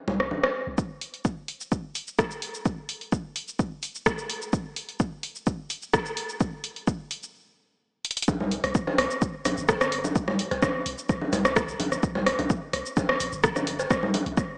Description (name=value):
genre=minimal techno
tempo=128 BPM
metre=4/4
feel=straight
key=unclear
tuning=A4 = 441 Hz
part: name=punchy sub bass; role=bass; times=0.1-0.7, 8.3-14.3 s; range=G1 to C2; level=-38 LUFS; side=equal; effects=sidechain pumping
part: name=electronic congas, rim click, bongos and cowbell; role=percussion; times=0.1-0.5, 8.3-14.5 s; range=none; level=-25 LUFS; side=equal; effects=overdrive, studio ambience
part: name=electronic kick drum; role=drums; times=0.8-14.5 s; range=none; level=-26 LUFS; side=equal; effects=overdrive, studio ambience
part: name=house drum kit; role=drums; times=0.8-14.5 s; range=hi-hat, rim click, shaker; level=-28 LUFS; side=equal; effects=overdrive, studio ambience
room=light reverb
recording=dry, gritty hardware recording, cassette tape, small speaker sound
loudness=-25 LUFS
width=side -35 dB against mid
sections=0.8-8.3 A section; 8.3-14.6 B section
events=build-up 0.8-8.3; drum fill 8.0; drop 8.3-14.6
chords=none